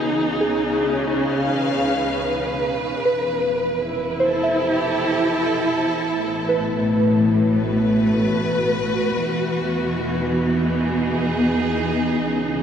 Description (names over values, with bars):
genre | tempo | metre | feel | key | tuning
ambient | 79 BPM | 4/4 | straight | E major | A4 = 440 Hz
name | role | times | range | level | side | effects
rich studio string section | sustained chords | 0.0-12.6 s | A2 to E#5 | -19 LUFS | equal | low-pass filter
soft synth bell | arpeggios | 0.0-9.2 s | G#4 to E5 | -25 LUFS | right 1 dB | chorus, tape echo
warm chamber double bass section | bass | 0.0-12.6 s | F1 to E2 | -34 LUFS | equal | none
bowed-like drone | drone | 0.0-12.6 s | B2 to E3 | -31 LUFS | right 2 dB | built-in reverb
room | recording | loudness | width
wet huge ambient reverb, RT60 8.6 s | none | -18 LUFS | side -8 dB against mid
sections
0.0-12.6 A section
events
fade-in on double bass section 0.0-12.6; fade-in on synth drone 0.0-12.6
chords
0.0 C#7; 3.0 Fmaj7; 6.1 A5; 9.2 Emaj7